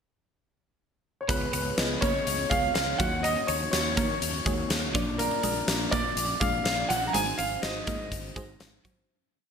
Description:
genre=1980s-style pop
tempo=123 BPM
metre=4/4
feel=straight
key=unclear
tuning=A4 = 440 Hz
part: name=warm concert grand piano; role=melody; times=1.2-8.8 s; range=Bb4 to Bb5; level=-29 LUFS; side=right 1 dB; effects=lush chorus
part: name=FM electric piano with soft pad layer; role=accompaniment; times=1.3-9.1 s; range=Ab3 to Eb5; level=-34 LUFS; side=left 1 dB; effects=chorus
part: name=twelve-string electric guitar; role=riff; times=1.3-8.9 s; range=F3 to Eb4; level=-36 LUFS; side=right 5 dB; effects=analog chorus, digital delay
part: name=fretless electric bass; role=bass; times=1.3-9.0 s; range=Ab1 to Eb3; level=-36 LUFS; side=equal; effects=none
part: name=huge arena drum kit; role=drums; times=1.3-9.0 s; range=hi-hat, kick drum, snare drum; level=-29 LUFS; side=left 1 dB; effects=gated reverb
room=moderate plate reverb, RT60 1.3 s, small room ambience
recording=bright 1980s-style digital production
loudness=-25 LUFS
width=side -6 dB against mid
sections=0.0-1.3 pickup bar; 1.3-9.1 verse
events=fade-out 7.1-9.1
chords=0.0 N.C.; 1.3 Db7; 3.0 Ebm7; 4.9 Bb; 7.1 Ab7

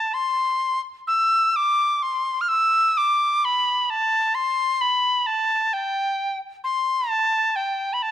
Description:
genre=celtic folk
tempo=41-45 BPM (dotted quarters)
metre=6/8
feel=rubato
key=unclear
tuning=A4 = 440 Hz
part: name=reedy mid whistle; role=solo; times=0.0-8.1 s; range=G5 to F6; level=-19 LUFS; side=left 1 dB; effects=none
room=light reverb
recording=none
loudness=-19 LUFS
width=side -11 dB against mid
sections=0.0-8.1 A section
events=none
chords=none

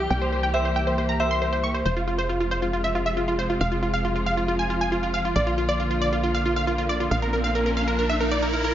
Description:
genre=trance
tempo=137 BPM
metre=4/4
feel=straight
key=F harmonic minor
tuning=A4 = 438 Hz
part: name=supersaw stab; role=melody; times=0.0-8.7 s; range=F4 to Db6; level=-25 LUFS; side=right 1 dB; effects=low-pass filter, dub echo
part: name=glassy synth bell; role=second line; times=0.0-1.8 s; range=E5 to G5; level=-29 LUFS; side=left 1 dB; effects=chorus, tremolo, dub echo
part: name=wide unison pluck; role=second line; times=0.0-8.7 s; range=F4 to Db6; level=-32 LUFS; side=equal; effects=none
part: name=muted studio string section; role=sustained chords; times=0.0-8.7 s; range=C3 to G4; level=-28 LUFS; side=left 1 dB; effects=none
part: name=tight sequencer bass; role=bass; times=0.0-8.7 s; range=F1 to C2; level=-28 LUFS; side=equal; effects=none
part: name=riser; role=sound effects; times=6.6-8.7 s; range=none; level=-30 LUFS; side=right 1 dB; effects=none
room=light reverb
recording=nothing above 7.5 kHz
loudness=-21 LUFS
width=side -11 dB against mid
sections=0.0-8.7 A section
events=riser 6.6-8.7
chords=0.0 C; 1.9 Fm; 5.4 Bb

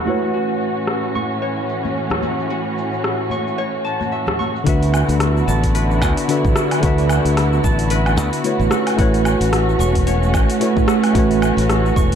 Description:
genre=sunset chillout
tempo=111 BPM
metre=4/4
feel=swing 58% on 16ths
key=A major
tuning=A4 = 435 Hz
part: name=tine electric piano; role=accompaniment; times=0.0-12.2 s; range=D3 to E5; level=-21 LUFS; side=right 1 dB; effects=auto-pan, ping-pong delay
part: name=muted studio string section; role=sustained chords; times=0.0-12.2 s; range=A2 to F#4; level=-22 LUFS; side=right 2 dB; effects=none
part: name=Celtic harp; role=arpeggios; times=0.0-12.2 s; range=F#4 to C#6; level=-27 LUFS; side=left 3 dB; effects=ping-pong delay
part: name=deep house drum kit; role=drums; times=0.1-12.2 s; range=hi-hat, rim click, shaker, woodblock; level=-24 LUFS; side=equal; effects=overdrive, low-pass filter on perc, low-pass filter on snare, low-pass filter on hats, low-pass filter on room
part: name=congas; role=percussion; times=0.1-4.5 s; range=none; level=-30 LUFS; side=left 4 dB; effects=none
part: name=modern bright fingered electric bass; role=bass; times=4.7-12.2 s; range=E1 to A2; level=-18 LUFS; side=equal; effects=none
part: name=electronic kick drum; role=drums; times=4.7-12.1 s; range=none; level=-19 LUFS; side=equal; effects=overdrive
room=moderate concert hall reverb, RT60 2.1 s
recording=dark, warm production, low-pass filter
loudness=-15 LUFS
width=side -8 dB against mid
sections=0.0-4.7 A section; 4.7-12.2 B section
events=filter sweep on tine electric piano 0.0-4.7; filter sweep 0.0-4.7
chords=0.1 A6; 4.7 D69; 8.7 A6

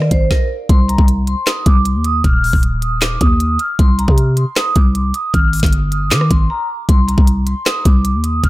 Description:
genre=hip hop, trap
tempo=155 BPM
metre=4/4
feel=half-time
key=C minor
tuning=A4 = 440 Hz
part: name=vibraphone with medium hard mallets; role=melody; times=0.0-8.5 s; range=Bb4 to F6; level=-20 LUFS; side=right 1 dB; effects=low-pass filter, tape echo
part: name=growling 808-style bass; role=bass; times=0.0-8.5 s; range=Eb1 to Eb3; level=-15 LUFS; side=equal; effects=none
part: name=trap drum kit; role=drums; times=0.0-8.5 s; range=handclaps, hi-hat, kick drum, rim click, snare drum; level=-14 LUFS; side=equal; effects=none
room=light reverb, digital ambience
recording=none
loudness=-12 LUFS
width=side -18 dB against mid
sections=0.7-8.5 A section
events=stop 0.3-0.7; break 6.5-6.9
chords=0.0 Ab5; 0.7 Cm; 2.2 Ebsus2; 3.8 Cmadd9; 5.3 Ab5; 6.9 Cm

